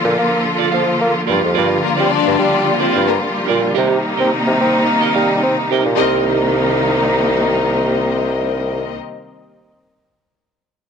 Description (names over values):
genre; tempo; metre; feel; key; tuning
disco; 108 BPM; 4/4; straight; C dorian; A4 = 440 Hz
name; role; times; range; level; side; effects
clean electric guitar; accompaniment; 0.0-9.7 s; F4 to F5; -21 LUFS; right 16 dB; none
clear symphonic string section; sustained chords; 0.0-9.0 s; C3 to A4; -18 LUFS; left 1 dB; none
mellow bassoon; bass; 0.0-9.0 s; C2 to C4; -18 LUFS; equal; transformer saturation
warm studio violin section; second line; 1.8-9.0 s; Bb3 to Eb5; -21 LUFS; left 11 dB; none
room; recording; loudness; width
moderate spring reverb, RT60 2.0 s, small room ambience; 1960s-style stereo with parts hard left and right; -13 LUFS; side -6 dB against mid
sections
0.0-6.0 A section; 6.0-8.2 B section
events
none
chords
0.0 Bbmaj7; 1.3 Gm7; 3.8 Cm7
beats
0.44 1.00 | 1.55 2.10 2.66 3.21 | 3.76 4.32 4.87 5.42 | 5.98 6.53 7.09 7.64